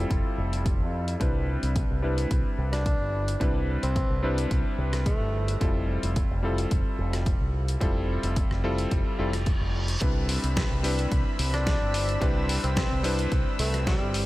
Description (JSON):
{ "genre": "nu-disco, nu disco", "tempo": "109 BPM", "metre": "4/4", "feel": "swing 53% on 16ths", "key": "C major", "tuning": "A4 = 440 Hz", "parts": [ { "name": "clear electric grand piano", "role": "accompaniment", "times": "0.0-14.3 s", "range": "G3 to B4", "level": "-31 LUFS", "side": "left 1 dB", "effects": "sidechain pumping, low-pass filter, diffuse ambient delay" }, { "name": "fingered electric bass with an envelope filter", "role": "bass", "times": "0.0-14.3 s", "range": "F1 to F2", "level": "-28 LUFS", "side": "equal", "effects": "none" }, { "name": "dusty soul sampler-style drum kit", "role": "drums", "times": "0.1-14.3 s", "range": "hi-hat, rim click, snare drum", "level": "-34 LUFS", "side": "left 1 dB", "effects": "none" }, { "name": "electronic kick drum", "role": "drums", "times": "0.1-14.0 s", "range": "none", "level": "-27 LUFS", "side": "equal", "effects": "none" }, { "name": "breathy tenor saxophone", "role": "melody", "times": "2.7-5.6, 11.5-14.3 s", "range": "G3 to D4", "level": "-33 LUFS", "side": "equal", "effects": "diffuse ambient delay" }, { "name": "reverse cymbal", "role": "sound effects", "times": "9.2-10.0 s", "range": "none", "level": "-38 LUFS", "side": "right 1 dB", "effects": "none" }, { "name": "lush unison pad", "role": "sustained chords", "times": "10.0-14.3 s", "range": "C4 to E6", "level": "-35 LUFS", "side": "equal", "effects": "chorus, sidechain pumping" } ], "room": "light reverb", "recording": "none", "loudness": "-24 LUFS", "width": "side -17 dB against mid", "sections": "0.0-14.3 A section", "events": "reverse cymbal 9.2-10.0", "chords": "0.0 Fmaj7; 1.2 Cmaj7; 5.6 Fmaj7; 10.0 Cmaj7" }